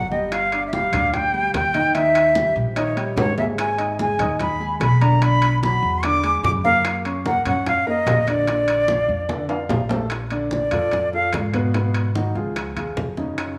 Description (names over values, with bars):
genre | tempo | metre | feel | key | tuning
Afro-Cuban jazz | 147 BPM | 4/4 | straight | unclear | A4 = 440 Hz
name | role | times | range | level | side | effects
jazz flute | melody | 0.0-11.3 s | Db5 to D6 | -23 LUFS | equal | none
warm baby grand piano | accompaniment | 0.0-13.5 s | Cb3 to Eb6 | -28 LUFS | equal | none
upright bass | bass | 0.0-13.6 s | G1 to Ab2 | -27 LUFS | equal | none
bongos | percussion | 0.1-13.6 s | none | -35 LUFS | equal | none
congas | percussion | 0.1-13.6 s | none | -33 LUFS | equal | none
timbales | percussion | 0.3-13.6 s | none | -32 LUFS | equal | none
room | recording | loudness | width
moderate lush hall reverb, RT60 2.6 s | rough home demo mix, small room reverb | -20 LUFS | mono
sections
0.0-10.1 A section; 10.1-13.6 B section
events
drum fill 3.2-3.6, 9.3-10.1; flute solo 10.1-13.6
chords
0.3 G5; 1.9 Eb7b9; 3.6 Abm; 5.2 Bm; 6.0 E9; 6.8 Gb6; 8.5 Bb; 10.1 Bbmaj7; 11.7 Abm7; 12.6 Db